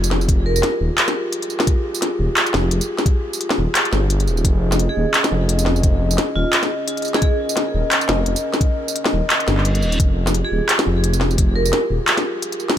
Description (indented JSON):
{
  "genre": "half-time drum and bass",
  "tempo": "173 BPM",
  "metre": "4/4",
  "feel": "swing 57% on 16ths, half-time",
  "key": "F minor",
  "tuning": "A4 = 441 Hz",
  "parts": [
    { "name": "dark analog pad", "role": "sustained chords", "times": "0.0-12.8 s", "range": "Db4 to Eb5", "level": "-25 LUFS", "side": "equal", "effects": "chorus, sidechain pumping" },
    { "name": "dark detuned saw bass", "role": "bass", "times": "0.0-12.0 s", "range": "Eb1 to G1", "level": "-19 LUFS", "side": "equal", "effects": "none" },
    { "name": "organic electronic drum kit", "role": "drums", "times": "0.0-12.8 s", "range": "handclaps, hi-hat, snare drum, tambourine", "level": "-20 LUFS", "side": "equal", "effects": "none" },
    { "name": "electronic kick drum", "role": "drums", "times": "0.3-11.5 s", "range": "none", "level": "-17 LUFS", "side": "equal", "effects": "none" },
    { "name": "vibraphone with hard mallets", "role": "melody", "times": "0.5-0.6, 4.9-7.3, 10.4-11.7 s", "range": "F4 to Bb4", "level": "-27 LUFS", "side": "right 2 dB", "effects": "vintage 12-bit sampler grit, digital delay" },
    { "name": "reverse cymbal", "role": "sound effects", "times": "9.5-10.0 s", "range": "none", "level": "-32 LUFS", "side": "right 1 dB", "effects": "none" }
  ],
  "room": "light reverb, digital ambience",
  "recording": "none",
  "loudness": "-16 LUFS",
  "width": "side -10 dB against mid",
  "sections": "0.0-12.8 A section",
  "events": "reverse cymbal 9.5-10.0",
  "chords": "0.0 Fmadd9; 4.4 Dbadd9; 10.0 Fmadd9"
}